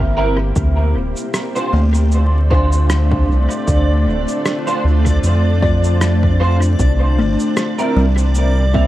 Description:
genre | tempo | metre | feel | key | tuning
ambient dub | 77 BPM | 4/4 | swing 56% on 16ths | D minor | A4 = 441 Hz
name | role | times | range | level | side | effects
granular cloud pad | sustained chords | 0.0-8.9 s | A3 to C5 | -23 LUFS | left 1 dB | built-in reverb
round analog bass | bass | 0.0-8.9 s | D1 to F2 | -14 LUFS | equal | none
electronic kick drum | drums | 0.0-8.9 s | none | -19 LUFS | equal | overdrive
electric guitar at the edge of break-up | stabs | 0.2-8.9 s | Bb3 to C5 | -22 LUFS | right 2 dB | ensemble chorus, dub echo
electronic cabasa and rim click | drums | 0.6-8.5 s | none | -27 LUFS | equal | overdrive, dub echo
backwards swelling texture | texture | 2.1-8.9 s | D5 | -27 LUFS | equal | built-in reverb
buzzing kalimba | arpeggios | 1.7-8.9 s | G3 to D5 | -24 LUFS | left 2 dB | tape echo
room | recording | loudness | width
digital ambience | dark, warm production, vinyl crackle | -13 LUFS | side -15 dB against mid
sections
0.0-8.9 A section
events
fade-in on ambient pad 0.0-8.9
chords
0.0 C7; 0.6 Dm7; 6.8 C7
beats
| 0.56 1.34 2.12 2.90 | 3.68 4.46 5.24 6.02 | 6.79 7.57 8.35

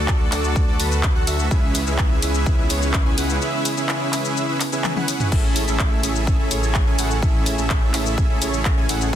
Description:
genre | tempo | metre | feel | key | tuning
EDM, festival progressive house | 126 BPM | 4/4 | straight | A major | A4 = 440 Hz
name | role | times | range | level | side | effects
warm chamber string section | sustained chords | 0.0-9.2 s | C#3 to A4 | -31 LUFS | left 1 dB | sidechain pumping
dense compressed supersaw | riff | 0.0-9.2 s | C#4 to G#5 | -24 LUFS | right 1 dB | sidechain pumping, ping-pong delay
wide detuned saw bass | bass | 0.0-9.2 s | A1 to D2 | -24 LUFS | equal | chorus, sidechain pumping
big-room dance drum kit | drums | 0.1-9.2 s | crash cymbal, handclaps, hi-hat, ride cymbal, shaker, toms | -26 LUFS | left 1 dB | studio reverb
electronic kick drum | drums | 0.1-9.2 s | none | -19 LUFS | equal | studio reverb
room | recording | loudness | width
digital ambience | dense, heavily limited modern master | -18 LUFS | side -10 dB against mid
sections
0.0-9.2 A section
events
break 3.4-5.3; drum fill 4.8-5.3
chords
0.0 D; 1.5 C#m7; 5.3 Amaj7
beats
0.08 0.56 1.03 | 1.51 1.99 2.46 2.94 | 3.42 3.89 4.37 4.84 | 5.32 5.80 6.27 6.75 | 7.22 7.70 8.18 8.65 | 9.13

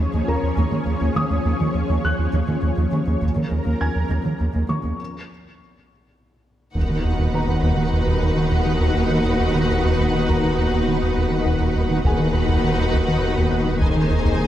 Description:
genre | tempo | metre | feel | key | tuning
cinematic, hybrid orchestral and electronic film score | 68 BPM (dotted quarters) | 6/8 | straight | unclear | A4 = 441 Hz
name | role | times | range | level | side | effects
analog string pad | sustained chords | 0.0-14.5 s | D#3 to Db5 | -26 LUFS | left 1 dB | ensemble chorus
round analog bass | riff | 0.0-14.5 s | Eb2 to Eb3 | -22 LUFS | right 1 dB | none
dark symphonic cello section | bass | 0.0-14.5 s | Eb2 | -27 LUFS | equal | none
felt-muted upright piano | texture | 0.3-13.8 s | Ab4 to Ab6 | -32 LUFS | left 1 dB | digital delay
taiko ensemble | drums | 1.0-14.5 s | none | -27 LUFS | equal | none
warm symphonic violin section | second line | 6.8-14.5 s | B4 to Ab5 | -29 LUFS | left 1 dB | none
warm symphonic viola section | accompaniment | 6.8-14.5 s | D#3 to D#4 | -28 LUFS | equal | none
dark French horn section | sustained chords | 6.8-14.5 s | B3 to Ab4 | -28 LUFS | left 2 dB | none
detuned saw bass | bass | 6.8-14.5 s | D#1 | -26 LUFS | equal | none
rich symphonic double bass section | bass | 6.8-14.5 s | D#2 | -29 LUFS | equal | none
room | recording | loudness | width
light reverb | close, detailed microphones, faint mains hum | -18 LUFS | side -12 dB against mid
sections
0.0-6.8 A section; 6.8-14.5 B section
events
break 5.0-6.8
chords
0.0 Bbm7/Eb; 5.0 N.C.; 6.8 B/D#; 13.8 Ab/Eb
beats
0.58 | 1.46 2.34 | 3.23 4.11 | 4.99 5.87 | 6.76 7.64 | 8.52 9.40 | 10.29 11.17 | 12.05 12.93 | 13.81

